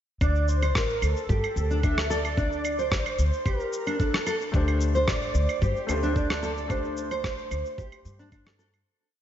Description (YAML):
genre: organic downtempo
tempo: 111 BPM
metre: 4/4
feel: straight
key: unclear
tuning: A4 = 440 Hz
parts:
  - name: breathy flute-like synth lead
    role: melody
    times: 0.2-8.6 s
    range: A4 to E5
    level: -32 LUFS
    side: right 1 dB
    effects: ensemble chorus, diffuse ambient delay
  - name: nylon-string guitar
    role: arpeggios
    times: 0.2-8.7 s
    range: D4 to C5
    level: -30 LUFS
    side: right 1 dB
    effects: lush chorus, diffuse ambient delay
  - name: upright bass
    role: bass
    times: 0.2-8.8 s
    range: A1 to G2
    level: -27 LUFS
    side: equal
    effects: none
  - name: electronic claves, shaker and rim click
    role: drums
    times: 0.2-8.8 s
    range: none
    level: -33 LUFS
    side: right 1 dB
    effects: overdrive
  - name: electronic kick drum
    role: drums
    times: 0.2-8.4 s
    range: none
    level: -28 LUFS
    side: equal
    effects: overdrive
  - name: felt-muted upright piano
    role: accompaniment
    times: 4.5-8.9 s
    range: A3 to C5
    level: -33 LUFS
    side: left 4 dB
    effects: sidechain pumping, diffuse ambient delay
room: moderate lush hall reverb, RT60 1.8 s, small room reverb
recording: dreamy mix soaked in reverb, nothing above 7.8 kHz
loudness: -24 LUFS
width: side -10 dB against mid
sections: 0.2-8.9 groove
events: fade-out 6.0-8.9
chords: 0.2 D5